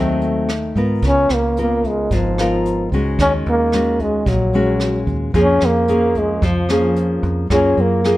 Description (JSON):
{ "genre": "bossa nova", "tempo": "111 BPM", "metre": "4/4", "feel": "straight", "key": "Eb minor", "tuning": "A4 = 440 Hz", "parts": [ { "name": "breathy trombone", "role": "melody", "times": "0.0-8.2 s", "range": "F3 to Db4", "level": "-18 LUFS", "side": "equal", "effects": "none" }, { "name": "nylon-string guitar", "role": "accompaniment", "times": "0.0-8.2 s", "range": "Ab2 to Bb4", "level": "-19 LUFS", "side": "left 1 dB", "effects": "none" }, { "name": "fingered electric bass", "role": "bass", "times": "0.0-8.2 s", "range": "Ab1 to Ab2", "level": "-21 LUFS", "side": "equal", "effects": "none" }, { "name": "jazz brush drum kit", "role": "drums", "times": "0.2-8.2 s", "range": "hi-hat, kick drum, rim click", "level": "-26 LUFS", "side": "right 1 dB", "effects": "none" } ], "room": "light reverb", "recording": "none", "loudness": "-14 LUFS", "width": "side -16 dB against mid", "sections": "0.0-8.2 A section", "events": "none", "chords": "0.0 Ab7b9; 1.0 Db6; 3.2 Ebm7; 5.3 Bbm7/F; 7.5 Gbmaj9", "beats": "0.49 | 1.03 1.57 2.11 2.65 | 3.19 3.73 4.27 4.81 | 5.35 5.89 6.43 6.97 | 7.51 8.05" }